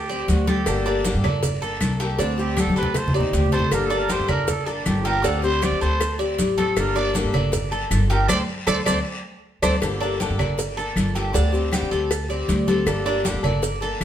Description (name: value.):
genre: latin, Cuban son and guajira.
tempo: 157 BPM.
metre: 4/4.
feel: straight.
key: G minor.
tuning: A4 = 437 Hz.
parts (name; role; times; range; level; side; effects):
growling trumpet; melody; 0.0-9.7 s; D4 to D5; -27 LUFS; right 3 dB; none.
Cuban tres; arpeggios; 0.0-14.0 s; D4 to D5; -27 LUFS; right 5 dB; none.
upright bass; bass; 0.0-14.0 s; G1 to D3; -25 LUFS; equal; none.
picked swing-style acoustic guitar; accompaniment; 0.1-14.0 s; D3 to A4; -26 LUFS; left 5 dB; none.
congas; percussion; 0.1-14.0 s; none; -26 LUFS; left 1 dB; none.
maracas; percussion; 0.1-14.0 s; none; -36 LUFS; right 5 dB; none.
cowbell; percussion; 0.3-14.0 s; none; -30 LUFS; left 1 dB; none.
guiro; percussion; 0.3-14.0 s; none; -37 LUFS; left 4 dB; none.
claves; percussion; 0.7-14.0 s; none; -35 LUFS; left 3 dB; none.
room: wet stone room reverb, RT60 1.0 s.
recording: band playing live in one room.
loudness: -19 LUFS.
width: side -10 dB against mid.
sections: 0.0-9.8 A section; 9.8-14.0 B section.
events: trumpet solo 0.0-9.8; drum fill 2.6-3.7, 9.1-9.8; band accent 8.3-9.8.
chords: 0.0 D7sus4; 0.7 Gmadd9; 2.2 D7sus4; 3.7 Gmadd9; 5.2 D7sus4; 6.8 Gmadd9; 8.3 D5; 9.8 Gmadd9; 11.3 D7sus4; 12.9 Gmadd9.